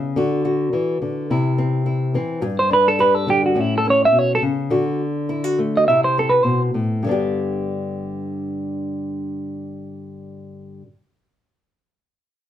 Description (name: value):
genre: highlife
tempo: 105 BPM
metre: 4/4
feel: straight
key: G major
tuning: A4 = 440 Hz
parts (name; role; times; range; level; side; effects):
- nylon-string guitar; accompaniment; 0.0-10.9 s; G2 to G4; -21 LUFS; left 2 dB; none
- semi-hollow electric guitar; melody; 2.6-6.6 s; E4 to E5; -15 LUFS; right 2 dB; none
room: wet studio reverb, RT60 0.6 s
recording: band playing live in one room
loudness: -17 LUFS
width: side -11 dB against mid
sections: 0.0-7.0 A section; 7.0-9.3 B section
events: clean electric guitar solo 0.0-7.0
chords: 0.1 D; 1.3 C; 2.4 G5; 3.6 A; 4.7 D; 5.9 C; 7.0 G